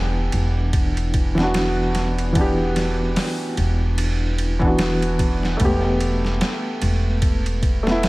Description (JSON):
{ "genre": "trip hop", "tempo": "74 BPM", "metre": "4/4", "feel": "swing 58% on 16ths", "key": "E minor", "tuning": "A4 = 441 Hz", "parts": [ { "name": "felt-muted upright piano", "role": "accompaniment", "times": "0.0-8.1 s", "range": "E3 to G4", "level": "-22 LUFS", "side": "equal", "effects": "harmonic tremolo, vintage 12-bit sampler grit, tape echo" }, { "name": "upright bass", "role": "bass", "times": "0.0-8.1 s", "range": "E1", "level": "-22 LUFS", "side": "equal", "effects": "none" }, { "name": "boom bap sampler-style drum kit", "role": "drums", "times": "0.3-8.1 s", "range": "hi-hat, kick drum, ride cymbal, snare drum", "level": "-24 LUFS", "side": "equal", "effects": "studio reverb" } ], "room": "small room ambience", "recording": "vinyl crackle", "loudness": "-18 LUFS", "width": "side -22 dB against mid", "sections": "0.0-8.1 A section", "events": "none", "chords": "0.0 Em7; 5.6 Gadd9/E" }